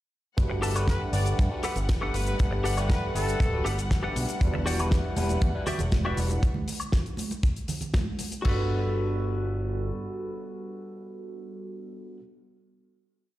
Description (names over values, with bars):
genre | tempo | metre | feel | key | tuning
nu-disco, nu disco | 119 BPM | 4/4 | straight | G major | A4 = 440 Hz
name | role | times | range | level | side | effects
overdriven tine electric piano | accompaniment | 0.4-12.2 s | G3 to F#5 | -33 LUFS | equal | phaser, sidechain pumping, ping-pong delay
clear symphonic string section | sustained chords | 0.4-6.4 s | G3 to F#5 | -38 LUFS | left 1 dB | sidechain pumping
fat analog bass | bass | 0.4-9.9 s | D1 to G2 | -28 LUFS | equal | sidechain pumping
damped 70s drum kit | drums | 0.4-8.5 s | cabasa, crash cymbal, hi-hat, snare drum, woodblock | -35 LUFS | left 2 dB | none
kick drum | drums | 0.4-8.6 s | none | -25 LUFS | equal | none
direct-recorded clean electric guitar | riff | 0.5-12.2 s | F#4 to A5 | -35 LUFS | left 1 dB | wide subtle chorus, ping-pong delay
clear trumpet section | melody | 0.9-3.7 s | A4 to D5 | -37 LUFS | left 1 dB | ping-pong delay
congas | percussion | 4.5-8.3 s | none | -35 LUFS | right 3 dB | none
room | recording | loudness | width
light reverb, small room ambience | played on a big sound system in a bare room, stone room reverb | -25 LUFS | side -15 dB against mid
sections
0.4-8.4 drop; 8.4-12.5 final chord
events
drop 0.4-8.4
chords
0.4 Gmaj9; 4.4 Em9; 8.4 Gmaj9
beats
| 0.38 0.88 1.39 1.89 | 2.40 2.90 3.40 3.91 | 4.41 4.92 5.42 5.92 | 6.43 6.93 7.44 7.94 | 8.45 8.95 9.45 9.96 | 10.46 10.97 11.47 11.97